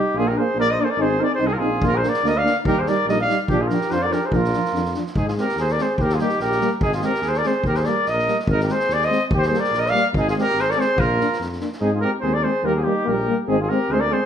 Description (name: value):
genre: balkan folk, Balkan brass band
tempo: 144 BPM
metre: 2/4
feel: swing 54% on 16ths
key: unclear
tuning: A4 = 440 Hz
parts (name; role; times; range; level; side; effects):
- warm trumpet; melody; 0.0-14.3 s; G4 to F5; -22 LUFS; equal; none
- mellow flugelhorn; second line; 0.0-14.3 s; D4 to D5; -26 LUFS; right 1 dB; none
- dark French horn; accompaniment; 0.0-14.2 s; Bb3 to Eb4; -27 LUFS; left 6 dB; none
- dark euphonium; accompaniment; 0.0-14.2 s; F3 to C4; -27 LUFS; right 6 dB; none
- mellow tuba; bass; 0.1-14.1 s; Ab1 to Ab2; -26 LUFS; left 1 dB; none
- street-band drum kit; percussion; 1.8-11.8 s; kick drum, snare drum; -28 LUFS; equal; none
room: moderate recital hall reverb, RT60 1.4 s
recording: minimal, uncompressed stereo recording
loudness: -18 LUFS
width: side -8 dB against mid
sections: 0.0-5.1 A section; 5.1-11.8 B section; 11.8-14.3 B section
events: none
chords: 0.2 Bb; 1.0 Ab; 1.8 Bb; 2.7 Eb; 3.5 Bb; 5.1 Ab; 6.0 Eb; 6.8 Ab; 7.6 Eb; 8.5 Ab; 9.3 Eb; 10.1 Ab; 11.0 Bb; 11.8 Ab; 12.6 Eb; 13.5 Ab